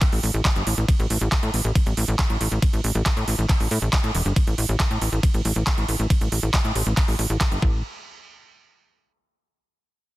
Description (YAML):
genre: psychedelic trance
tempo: 138 BPM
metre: 4/4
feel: straight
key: unclear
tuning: A4 = 439 Hz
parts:
  - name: big-room dance drum kit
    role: drums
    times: 0.0-7.6 s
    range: handclaps, hi-hat, ride cymbal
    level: -26 LUFS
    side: right 2 dB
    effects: overdrive
  - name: electronic kick drum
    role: drums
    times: 0.0-7.7 s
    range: none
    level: -20 LUFS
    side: equal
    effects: overdrive
  - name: tight sequencer bass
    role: bass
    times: 0.1-7.8 s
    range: E1 to A2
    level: -23 LUFS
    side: equal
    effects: tube saturation
room: little or no reverb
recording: dense, heavily limited modern master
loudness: -19 LUFS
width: side -18 dB against mid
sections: 0.0-7.8 A section; 7.8-9.6 B section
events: drop 0.0-7.8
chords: none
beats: 0.02 0.45 | 0.89 1.32 1.75 2.19 | 2.62 3.06 3.49 3.93 | 4.36 4.80 5.23 5.67 | 6.10 6.54 6.97 7.41